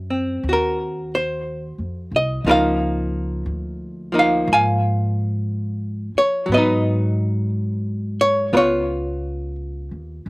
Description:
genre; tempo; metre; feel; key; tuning
jazz ballad; 59 BPM; 4/4; swing 66% on 8ths; Db major; A4 = 442 Hz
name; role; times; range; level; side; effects
archtop guitar, miked and amplified; accompaniment; 0.0-10.3 s; F3 to Ab5; -19 LUFS; equal; none
upright bass; bass; 0.0-10.3 s; C2 to Ab2; -24 LUFS; equal; none
room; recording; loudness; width
little or no reverb; recorded outdoors, with no room sound; -18 LUFS; side -24 dB against mid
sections
0.0-10.3 A section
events
none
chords
0.0 Ab6 (rootless); 2.5 Db69; 6.5 Abm7; 8.5 Db9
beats
0.44 1.45 | 2.46 3.47 4.47 5.48 | 6.50 7.51 8.53 9.57

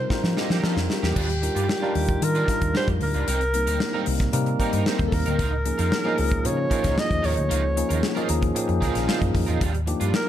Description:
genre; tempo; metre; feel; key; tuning
polished 1980s jazz-funk pop; 114 BPM; 4/4; straight; unclear; A4 = 440 Hz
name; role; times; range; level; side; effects
warm alto saxophone; melody; 0.0-10.3 s; G4 to Eb5; -27 LUFS; equal; none
tine electric piano; accompaniment; 0.0-10.3 s; Eb3 to Bb5; -27 LUFS; left 2 dB; medium stereo tremolo, wide subtle chorus
vintage muted fingered electric bass; bass; 0.0-10.1 s; Bb1 to F3; -25 LUFS; equal; none
electric guitar at the edge of break-up; riff; 0.1-10.2 s; G3 to C5; -32 LUFS; right 7 dB; ensemble chorus
modern studio drum kit; drums; 0.1-10.3 s; crash cymbal, hi-hat, kick drum, snare drum; -27 LUFS; equal; gated reverb
room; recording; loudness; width
light reverb, small room ambience; none; -21 LUFS; side -11 dB against mid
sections
0.0-1.2 A section; 1.2-10.3 B section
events
drum fill 0.0-1.2; tine electric piano fill 8.0-9.6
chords
0.0 F9sus4; 1.2 Ebmaj9; 3.3 Cm7; 5.4 Db69; 9.6 Ebmaj9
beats
0.10 0.63 | 1.16 1.69 2.22 2.75 | 3.28 3.81 4.33 4.86 | 5.39 5.92 6.45 6.97 | 7.50 8.03 8.56 9.09 | 9.61 10.14

